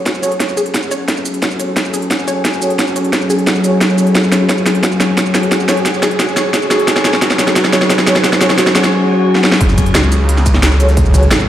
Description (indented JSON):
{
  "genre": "dark technical drum and bass",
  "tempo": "176 BPM",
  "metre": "4/4",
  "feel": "straight",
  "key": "F# minor",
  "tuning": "A4 = 440 Hz",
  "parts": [
    { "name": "metallic inharmonic drone", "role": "sustained chords", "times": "0.0-11.5 s", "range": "F#3 to C#5", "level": "-16 LUFS", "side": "left 1 dB", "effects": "chorus, built-in reverb, phaser, sidechain pumping" },
    { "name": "riser and swell", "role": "sound effects", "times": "0.2-9.6 s", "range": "none", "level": "-24 LUFS", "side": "equal", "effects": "none" },
    { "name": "wide unison pluck", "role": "arpeggios", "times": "0.1-8.8 s", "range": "F#4 to F#5", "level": "-21 LUFS", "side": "left 1 dB", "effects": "sidechain pumping, tape echo" },
    { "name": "drum and bass drum kit", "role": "drums", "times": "0.1-11.5 s", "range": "hi-hat, shaker, snare drum", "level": "-15 LUFS", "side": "right 1 dB", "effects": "none" },
    { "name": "electronic kick drum", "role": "drums", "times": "0.1-11.2 s", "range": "none", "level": "-18 LUFS", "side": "equal", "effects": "overdrive, high-pass filter on kick, high-pass filter on room" },
    { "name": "mellow brass ensemble", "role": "stabs", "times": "0.2-0.3, 2.6-5.8, 8.1-8.5, 10.8-11.2 s", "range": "F#4 to C#5", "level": "-22 LUFS", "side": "right 1 dB", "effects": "low-pass filter, tape echo" },
    { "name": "snarling distorted saw bass", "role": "bass", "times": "9.6-11.5 s", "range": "F#1 to C#2", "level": "-12 LUFS", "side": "equal", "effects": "distortion, tube saturation" },
    { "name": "jungle sampler-style drum kit", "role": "drums", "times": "9.6-11.4 s", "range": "hi-hat, snare drum", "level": "-25 LUFS", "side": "equal", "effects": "high-pass filter on hats, high-pass filter on snare, high-pass filter on room" }
  ],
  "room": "moderate plate reverb, RT60 2.6 s",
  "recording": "played on a big sound system in a bare room, large studio reverb",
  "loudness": "-10 LUFS",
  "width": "side -11 dB against mid",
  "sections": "0.0-9.6 A section; 9.6-11.5 B section",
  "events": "build-up 0.0-9.6; drum fill 0.0-8.9, 9.4; filter sweep on synth drone 0.0-9.6; riser 0.2-8.9; swell 8.9-9.6; drop 9.6-11.5",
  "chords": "0.0 F#madd9"
}